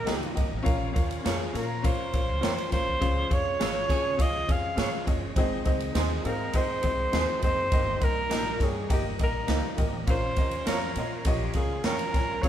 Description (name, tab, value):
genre	uptempo 1960s-style soul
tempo	102 BPM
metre	4/4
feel	straight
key	unclear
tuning	A4 = 440 Hz
part	breathy alto saxophone	melody	0.0-12.5 s	G4 to F5	-30 LUFS	right 1 dB	none
part	warm upright piano	accompaniment	0.0-12.5 s	G2 to Ab5	-33 LUFS	left 2 dB	none
part	tonewheel organ	sustained chords	0.0-12.5 s	Eb3 to F4	-41 LUFS	right 1 dB	none
part	electric guitar through a small old amp	stabs	0.1-11.9 s	Bb3 to Db5	-35 LUFS	right 4 dB	none
part	upright bass	bass	0.1-12.5 s	F1 to Db3	-33 LUFS	equal	none
part	swinging big-band drum kit	drums	0.1-12.5 s	kick drum, ride cymbal, snare drum	-28 LUFS	equal	none
part	warm horn section	second line	3.6-4.3 s	F3 to Ab4	-39 LUFS	right 2 dB	none
room	moderate large studio reverb, RT60 1.3 s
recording	band playing live in one room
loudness	-24 LUFS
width	side -10 dB against mid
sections	0.0-12.5 A section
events	band accent 3.0-5.4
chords	0.0 Eb; 0.7 Bbm; 3.0 Db; 5.4 Ab; 7.7 Eb/G; 10.1 Bbm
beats	0.08 | 0.66 1.25 1.84 2.42 | 3.01 3.60 4.19 4.77 | 5.36 5.95 6.54 7.13 | 7.72 8.30 8.89 9.48 | 10.07 10.66 11.25 11.84 | 12.43